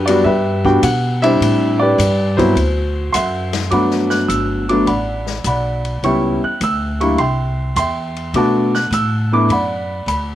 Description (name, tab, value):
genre	jazz piano trio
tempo	104 BPM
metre	4/4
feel	swing 69% on 8ths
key	G major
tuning	A4 = 437 Hz
part	warm grand piano	melody	0.0-10.3 s	F#3 to F#6	-16 LUFS	equal	none
part	upright bass	bass	0.0-10.3 s	G1 to B2	-20 LUFS	equal	none
part	open jazz drum kit	drums	0.1-10.3 s	hi-hat, kick drum, ride cymbal, snare drum	-28 LUFS	left 6 dB	none
room	light reverb, small room ambience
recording	1960s-style stereo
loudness	-14 LUFS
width	side -12 dB against mid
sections	0.0-3.7 A section; 3.7-10.3 B section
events	none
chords	0.0 Em9; 1.4 Am9; 2.6 D9; 3.7 Gmaj9; 6.0 C#m7b5; 7.2 C; 8.3 Bm7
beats	0.26 0.83 | 1.41 1.99 2.57 3.14 | 3.72 4.30 4.88 5.46 | 6.03 6.61 7.19 7.77 | 8.35 8.93 9.50 10.08